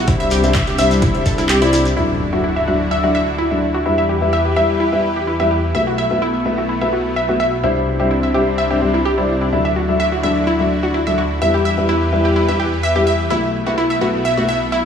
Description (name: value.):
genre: progressive house.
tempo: 127 BPM.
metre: 4/4.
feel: straight.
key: E minor.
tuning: A4 = 440 Hz.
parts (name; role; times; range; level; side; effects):
supersaw pad; sustained chords; 0.0-14.8 s; C3 to B4; -23 LUFS; right 1 dB; sidechain pumping.
dark detuned saw bass; bass; 0.0-14.8 s; B1 to E2; -22 LUFS; equal; sidechain pumping.
wide unison pluck; arpeggios; 0.1-14.8 s; E4 to E5; -19 LUFS; right 1 dB; sidechain pumping, tape echo.
dark baby grand piano; stabs; 0.1-14.5 s; F#3 to E5; -19 LUFS; left 3 dB; sidechain pumping, low-pass filter, tape echo.
deep house drum kit; drums; 0.1-1.9 s; handclaps, hi-hat, rim click; -24 LUFS; equal; overdrive, sidechain pumping on hats, low-pass filter on hats, low-pass filter on snare.
electronic kick drum; drums; 0.1-1.4 s; none; -18 LUFS; equal; overdrive.
shekere; percussion; 0.1-1.9 s; none; -30 LUFS; left 3 dB; none.
impact; sound effects; 2.0-3.9 s; none; -29 LUFS; right 1 dB; none.
room: moderate lush hall reverb, RT60 2.1 s.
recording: small room ambience.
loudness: -14 LUFS.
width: side -7 dB against mid.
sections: 0.0-2.0 A section; 2.0-14.8 B section.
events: kick drops out 1.5-2.0; impact 2.0-3.9.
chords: 0.1 Cadd9; 2.0 Dadd9; 3.9 Em; 5.7 B7sus4; 7.6 Cadd9; 9.5 Dadd9; 11.4 Em; 13.3 B7sus4.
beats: | 0.08 0.55 1.02 1.49 | 1.97 2.44 2.91 3.38 | 3.86 4.33 4.80 5.27 | 5.75 6.22 6.69 7.16 | 7.64 8.11 8.58 9.05 | 9.53 10.00 10.47 10.94 | 11.41 11.89 12.36 12.83 | 13.30 13.78 14.25 14.72.